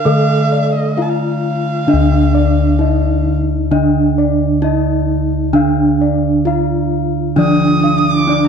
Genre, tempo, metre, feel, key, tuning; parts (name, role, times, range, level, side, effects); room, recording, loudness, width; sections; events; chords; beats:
Javanese gamelan; 66 BPM; 4/4; straight; A4 = 440 Hz
gamelan-type bronze metallophone; melody; 0.0-8.5 s; D4 to A4-30c; -16 LUFS; right 1 dB
warm erhu; second line; 0.0-8.5 s; Eb5+22c to Eb6; -20 LUFS; right 4 dB
gamelan-type bronze metallophone; accompaniment; 0.0-8.5 s; D3 to A3-30c; -18 LUFS; right 6 dB
gamelan-type bossed gongs; bass; 0.0-8.5 s; D2 to D5; -17 LUFS; left 3 dB
gamelan-type bossed gongs; arpeggios; 0.1-8.5 s; D5 to F5-30c; -23 LUFS; left 9 dB
moderate recital hall reverb, RT60 1.4 s; dark, warm production; -12 LUFS; side -6 dB against mid
0.0-8.5 A section
0.05 0.97 | 1.88 2.80 3.71 4.63 | 5.54 6.46 7.37 8.29